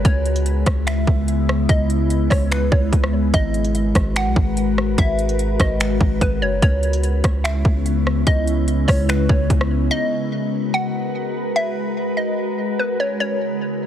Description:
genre	hip hop, atmospheric cloud-rap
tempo	146 BPM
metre	4/4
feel	half-time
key	G# minor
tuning	A4 = 442 Hz
part	hollow square pluck	melody	0.0-13.6 s	B4 to F#5	-25 LUFS	equal	chorus, tape echo
part	glassy FM pad	sustained chords	0.0-13.9 s	C#3 to B4	-22 LUFS	left 1 dB	ensemble chorus, built-in reverb, sidechain pumping
part	warm 808-style bass	bass	0.0-9.9 s	F#1 to C#2	-20 LUFS	equal	none
part	trap drum kit	drums	0.0-9.7 s	finger snaps, hi-hat, kick drum, rim click	-19 LUFS	equal	none
room	digital ambience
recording	heavily compressed radio sound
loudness	-17 LUFS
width	side -10 dB against mid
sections	0.0-9.9 A section; 9.9-13.9 A section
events	none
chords	0.0 C#m7; 3.3 G#m7; 6.6 C#m7; 9.9 G#m7; 13.2 C#m7

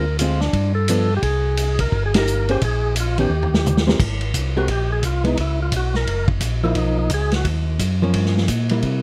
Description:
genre	soul jazz organ trio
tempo	173 BPM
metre	4/4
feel	swing 62% on 8ths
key	Ab major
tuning	A4 = 440 Hz
part	percussive tonewheel organ	melody	0.0-7.5 s	D4 to Bb4	-27 LUFS	equal	slow rotary speaker
part	archtop guitar, miked and amplified	accompaniment	0.0-9.0 s	D3 to C5	-24 LUFS	equal	none
part	mellow tonewheel organ	bass	0.0-9.0 s	Gb1 to C3	-23 LUFS	equal	overdrive, chorus vibrato, slow rotary speaker
part	vintage drum kit	drums	0.2-8.9 s	crash cymbal, hi-hat, kick drum, ride cymbal, snare drum, toms	-26 LUFS	equal	none
room	little or no reverb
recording	close, detailed microphones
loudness	-20 LUFS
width	mono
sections	0.0-4.0 A section; 4.0-9.0 B section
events	band accent 2.1; drum fill 3.3-4.0; tonewheel organ solo 4.0-9.0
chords	0.0 Dm7b5; 0.5 G7; 1.2 Cm7; 2.6 Bbm7; 3.3 Eb; 4.0 Abmaj9; 5.4 Bsus24; 6.1 Gb; 6.8 Bmaj9#11; 8.1 Gm7b5

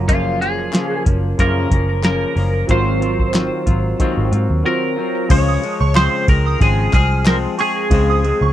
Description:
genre	indie pop, bedroom pop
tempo	92 BPM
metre	4/4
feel	swing 55% on 16ths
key	Db major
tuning	A4 = 440 Hz
part	chorused retro synth keys	accompaniment	0.0-5.3 s	Gb3 to C5	-26 LUFS	right 7 dB	phaser
part	semi-hollow electric guitar	accompaniment	0.0-8.5 s	Gb2 to F4	-22 LUFS	left 4 dB	lush chorus, warbly pitch drift
part	vintage muted picked electric bass	bass	0.0-8.5 s	Gb1 to Ab2	-18 LUFS	equal	none
part	twelve-string electric guitar	melody	0.1-8.5 s	F4 to Db5	-21 LUFS	equal	lush chorus, tape echo
part	soft vintage rhythm box	drums	0.1-8.4 s	crash cymbal, hi-hat, kick drum, ride cymbal, snare drum	-16 LUFS	equal	overdrive
part	group handclap	percussion	0.7-7.4 s	none	-30 LUFS	left 6 dB	none
part	soft synth bell	second line	5.5-8.5 s	C6 to F6	-25 LUFS	right 7 dB	phaser, ensemble chorus, tape echo
room	little or no reverb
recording	dry, close 1970s-style studio recording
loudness	-14 LUFS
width	side -12 dB against mid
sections	0.0-5.3 A section; 5.3-8.5 B section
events	break 4.7-5.3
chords	0.0 Gbmaj7; 2.7 Ab13; 5.3 Dbmaj7

